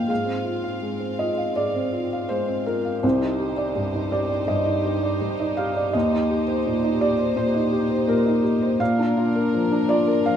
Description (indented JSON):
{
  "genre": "neoclassical piano and strings",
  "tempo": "82 BPM",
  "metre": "4/4",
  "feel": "rubato",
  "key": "Eb major",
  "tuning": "A4 = 440 Hz",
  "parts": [
    { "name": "felt-muted upright piano", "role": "accompaniment", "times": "0.0-10.4 s", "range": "C2 to G5", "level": "-20 LUFS", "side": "equal", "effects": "none" },
    { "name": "dark chamber string section", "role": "sustained chords", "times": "0.0-10.4 s", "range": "C4 to F5", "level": "-31 LUFS", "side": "right 4 dB", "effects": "none" }
  ],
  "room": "moderate large studio reverb, RT60 1.3 s",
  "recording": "minimal, uncompressed stereo recording",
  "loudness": "-20 LUFS",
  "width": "side -9 dB against mid",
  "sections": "0.0-10.4 A section",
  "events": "none",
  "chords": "0.1 Fm/Ab; 3.0 Cmadd9; 5.9 Eb6; 8.8 Bb",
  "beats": "| 0.10 0.83 1.57 2.31 | 3.04 3.77 4.49 5.21 | 5.94 6.66 7.37 8.08 | 8.80 9.53 10.25"
}